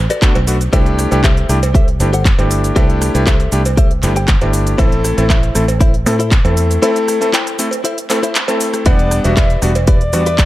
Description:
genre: nu-disco, nu disco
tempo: 118 BPM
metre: 4/4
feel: straight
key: unclear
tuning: A4 = 444 Hz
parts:
  - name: fingered electric bass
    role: bass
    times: 0.0-10.5 s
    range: E1 to A2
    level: -16 LUFS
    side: equal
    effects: tube saturation
  - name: direct-recorded clean electric guitar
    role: riff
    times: 0.1-10.4 s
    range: E4 to G5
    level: -23 LUFS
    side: left 2 dB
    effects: wide subtle chorus, slapback echo
  - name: house drum kit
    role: drums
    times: 0.1-10.5 s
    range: handclaps, hi-hat, rim click, shaker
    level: -21 LUFS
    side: equal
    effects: small room ambience
  - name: clear electric grand piano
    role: accompaniment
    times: 0.2-10.2 s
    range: G3 to F#5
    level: -18 LUFS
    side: left 1 dB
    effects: slapback echo
  - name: electronic kick drum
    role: drums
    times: 0.2-10.5 s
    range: none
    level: -12 LUFS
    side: equal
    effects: small room ambience
  - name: cowbell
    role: percussion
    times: 0.4-10.2 s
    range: none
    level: -26 LUFS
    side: right 5 dB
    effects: none
  - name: wooden flute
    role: melody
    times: 8.9-10.5 s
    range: D5 to E5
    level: -20 LUFS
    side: left 2 dB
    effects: none
room: light reverb, digital ambience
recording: dark, warm production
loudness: -11 LUFS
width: side -16 dB against mid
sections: 0.0-10.5 A section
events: break 6.8-8.9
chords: 0.0 Bm7; 0.7 C6; 4.8 Am; 8.9 Em7

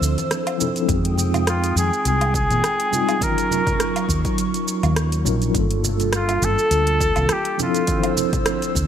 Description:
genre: sunset chillout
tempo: 103 BPM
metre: 4/4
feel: swing 55% on 16ths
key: unclear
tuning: A4 = 441 Hz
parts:
  - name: mellow tine electric piano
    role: accompaniment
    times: 0.0-8.9 s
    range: F3 to E5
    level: -25 LUFS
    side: moving between left 7 dB and right 7 dB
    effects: medium stereo tremolo, auto-pan, ping-pong delay
  - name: airy breathy pad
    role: sustained chords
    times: 0.0-8.9 s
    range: Gb3 to E6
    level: -28 LUFS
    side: right 1 dB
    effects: chorus
  - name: woody fretless electric bass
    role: bass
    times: 0.0-8.9 s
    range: G1 to Bb2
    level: -21 LUFS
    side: equal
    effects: tube saturation
  - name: deep house drum kit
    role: drums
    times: 0.0-8.9 s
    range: hi-hat, rim click, shaker, woodblock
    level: -26 LUFS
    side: right 2 dB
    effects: overdrive, studio reverb
  - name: congas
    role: percussion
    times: 0.2-8.9 s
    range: none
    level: -31 LUFS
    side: left 1 dB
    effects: none
  - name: electronic kick drum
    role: drums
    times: 0.9-8.9 s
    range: none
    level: -26 LUFS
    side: equal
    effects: overdrive, studio reverb
  - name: clear flugelhorn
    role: melody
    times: 1.5-8.1 s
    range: F4 to Bb4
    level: -23 LUFS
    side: equal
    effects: tape echo
room: light reverb, digital ambience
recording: none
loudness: -18 LUFS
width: side -9 dB against mid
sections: 0.0-8.9 A section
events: none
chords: 0.0 Dm9; 0.9 Fm9; 3.2 Ebm9; 5.5 Gm9; 7.6 Dm9

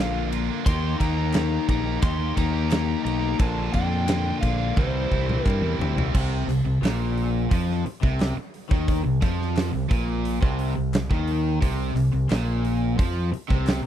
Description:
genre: classic rock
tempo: 88 BPM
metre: 4/4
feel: straight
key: unclear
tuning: A4 = 440 Hz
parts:
  - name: overdriven slide guitar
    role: melody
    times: 0.0-5.8 s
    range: C5 to C6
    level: -32 LUFS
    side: left 1 dB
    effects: tape echo
  - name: cranked stack guitar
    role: riff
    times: 0.0-13.9 s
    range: Bb2 to G4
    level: -28 LUFS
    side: left 12 dB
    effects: overdrive
  - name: cranked stack guitar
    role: riff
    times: 0.0-13.9 s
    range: Bb2 to G4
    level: -29 LUFS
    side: right 11 dB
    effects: overdrive
  - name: growling fingered electric bass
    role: bass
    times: 0.0-13.9 s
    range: Bb1 to G2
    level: -26 LUFS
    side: equal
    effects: overdrive
  - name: big rock drum kit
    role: drums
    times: 0.3-13.8 s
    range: crash cymbal, hi-hat, kick drum, ride cymbal, snare drum, toms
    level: -26 LUFS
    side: equal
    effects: none
  - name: group handclap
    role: percussion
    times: 1.3-13.8 s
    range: none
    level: -46 LUFS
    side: left 8 dB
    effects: none
room: little or no reverb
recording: dry, close 1970s-style studio recording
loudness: -21 LUFS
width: side -10 dB against mid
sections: 0.0-6.1 A section; 6.1-13.9 B section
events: drum fill 4.8-6.1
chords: 0.0 Bb; 0.7 Eb; 3.4 Bb; 4.8 C; 6.1 Bbsus24

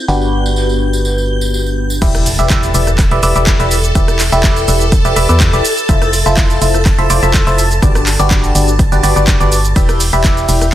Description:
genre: piano house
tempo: 124 BPM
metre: 4/4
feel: straight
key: E minor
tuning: A4 = 440 Hz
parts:
  - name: string machine, violins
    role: sustained chords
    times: 0.0-10.7 s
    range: A4 to G6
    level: -21 LUFS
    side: equal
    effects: ensemble chorus, sidechain pumping
  - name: barking FM electric piano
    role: riff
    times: 0.0-10.7 s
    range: B3 to E5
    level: -16 LUFS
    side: left 1 dB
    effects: phaser, sidechain pumping, dub echo
  - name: organ-like FM bass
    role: bass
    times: 0.1-10.7 s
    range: E1 to E2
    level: -15 LUFS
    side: equal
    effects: sidechain pumping
  - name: tambourine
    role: percussion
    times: 0.1-2.0 s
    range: none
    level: -25 LUFS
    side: right 2 dB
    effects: none
  - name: electronic kick drum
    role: drums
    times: 2.0-10.3 s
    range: none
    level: -13 LUFS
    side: equal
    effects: none
  - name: garage drum kit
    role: drums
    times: 2.0-10.7 s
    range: crash cymbal, handclaps, hi-hat, ride cymbal, rim click, shaker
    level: -18 LUFS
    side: right 1 dB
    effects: overdrive
  - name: impact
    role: sound effects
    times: 2.0-4.0 s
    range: none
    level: -23 LUFS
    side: equal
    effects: none
room: digital ambience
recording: dense, heavily limited modern master, low-pass filter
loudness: -10 LUFS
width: side -13 dB against mid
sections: 0.0-2.0 A section; 2.0-10.7 B section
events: drop 2.0-10.7; impact 2.0-4.0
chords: 0.1 Gmaj7; 2.0 Em7; 5.6 Fmaj7; 7.8 Gmaj7; 9.8 Em7

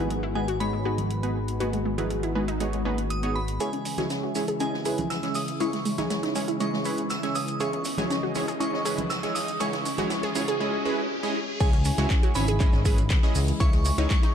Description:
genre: progressive house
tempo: 120 BPM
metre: 4/4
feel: straight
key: C# minor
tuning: A4 = 441 Hz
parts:
  - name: glassy synth bell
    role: melody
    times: 0.0-14.3 s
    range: G#5 to E6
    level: -34 LUFS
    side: right 1 dB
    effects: chorus, ping-pong delay
  - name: lush unison pad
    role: sustained chords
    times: 0.0-14.3 s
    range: C#3 to D#5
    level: -34 LUFS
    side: equal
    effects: chorus, sidechain pumping
  - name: analog pluck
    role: arpeggios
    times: 0.0-14.3 s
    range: G#3 to G#4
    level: -31 LUFS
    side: equal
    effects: chorus, cassette tape, sidechain pumping, dub echo
  - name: supersaw stab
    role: stabs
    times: 0.0-14.3 s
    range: G#3 to D#5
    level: -31 LUFS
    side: right 2 dB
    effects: sidechain pumping, low-pass filter, dub echo
  - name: fat analog bass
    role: bass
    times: 0.0-14.1 s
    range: G#1 to C#2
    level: -30 LUFS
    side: equal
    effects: sidechain pumping, high-pass filter
  - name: house drum kit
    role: drums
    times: 0.1-14.3 s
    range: crash cymbal, handclaps, hi-hat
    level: -37 LUFS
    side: right 2 dB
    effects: high-pass filter on hats, high-pass filter on cymbals, high-pass filter on snare
  - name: congas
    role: percussion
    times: 1.0-10.1 s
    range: none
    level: -37 LUFS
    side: right 1 dB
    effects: sidechain pumping on perc
  - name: open jazz drum kit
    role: drums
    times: 3.6-14.3 s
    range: hi-hat, shaker, snare drum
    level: -40 LUFS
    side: left 2 dB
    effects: sidechain pumping on hats, high-pass filter on hats, high-pass filter on snare, sidechain pumping on perc, high-pass filter on perc, high-pass filter on room
  - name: maracas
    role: percussion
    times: 3.6-14.3 s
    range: none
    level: -40 LUFS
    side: right 4 dB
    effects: none
  - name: riser and swell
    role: sound effects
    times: 7.6-11.6 s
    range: none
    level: -37 LUFS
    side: left 2 dB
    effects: none
  - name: electronic kick drum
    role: drums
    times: 11.6-14.2 s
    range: none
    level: -21 LUFS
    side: equal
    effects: overdrive
room: moderate lush hall reverb, RT60 2.0 s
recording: dark, warm production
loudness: -24 LUFS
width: side -8 dB against mid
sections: 0.0-3.6 A section; 3.6-11.6 B section; 11.6-14.3 C section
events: build-up 3.6-11.6; filter sweep on synth arpeggio sound 3.6-11.6; filter sweep on supersaw synth 3.6-11.6; riser 7.6-11.6; swell 10.6-11.6; drop 11.6-14.3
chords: 0.0 G#m7; 11.6 C#m

